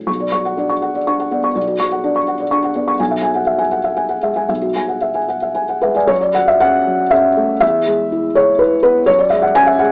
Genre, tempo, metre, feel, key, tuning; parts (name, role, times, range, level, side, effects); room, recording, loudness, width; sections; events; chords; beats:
neoclassical minimalist piano; 108-128 BPM; 3/4; rubato; B dorian; A4 = 440 Hz
felt-muted upright piano; solo; 0.0-9.9 s; B1 to C#6; -13 LUFS; equal; cassette tape
moderate studio reverb, RT60 0.5 s; home recording on cassette, AM radio sound; -13 LUFS; side -32 dB against mid
0.1-6.1 A section; 6.1-9.9 B section
0.1 Bmadd9; 3.0 Eadd9/B; 6.1 F#m; 7.6 E; 9.1 F#sus2
| 0.08 0.58 1.08 | 1.56 2.04 2.51 | 2.99 3.46 3.97 | 4.49 5.03 5.56 | 6.11 6.62 7.12 | 7.62 8.11 8.60 | 9.08 9.57